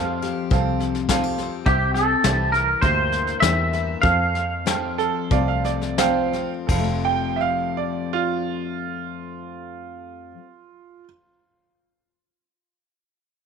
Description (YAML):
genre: honky-tonk and classic country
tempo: 83-104 BPM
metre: 4/4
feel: straight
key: F major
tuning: A4 = 440 Hz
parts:
  - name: twangy electric guitar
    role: melody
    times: 0.0-5.9 s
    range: G4 to F5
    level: -22 LUFS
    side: equal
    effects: analog chorus
  - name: bright grand piano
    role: accompaniment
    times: 0.0-10.3 s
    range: G4 to G5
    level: -29 LUFS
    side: right 11 dB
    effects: none
  - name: picked steel-string acoustic guitar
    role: accompaniment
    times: 0.0-10.5 s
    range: F2 to G4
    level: -28 LUFS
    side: left 10 dB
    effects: none
  - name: fingered electric bass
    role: bass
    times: 0.0-10.3 s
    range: F1 to F2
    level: -26 LUFS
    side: equal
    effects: none
  - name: soft brush drum kit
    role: drums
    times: 0.2-6.9 s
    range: crash cymbal, hi-hat, kick drum, snare drum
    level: -25 LUFS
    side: left 3 dB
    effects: none
  - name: bright upright piano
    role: second line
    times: 5.0-11.0 s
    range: F4 to G5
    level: -26 LUFS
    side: right 9 dB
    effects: none
room: moderate spring reverb, RT60 2.6 s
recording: 1960s-style stereo with parts hard left and right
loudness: -19 LUFS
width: side -6 dB against mid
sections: 0.0-1.7 A section; 1.7-6.7 B section; 6.7-9.6 C section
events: slowing down 1.7-6.7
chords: 0.0 Fadd9; 1.7 C7; 4.0 Fadd9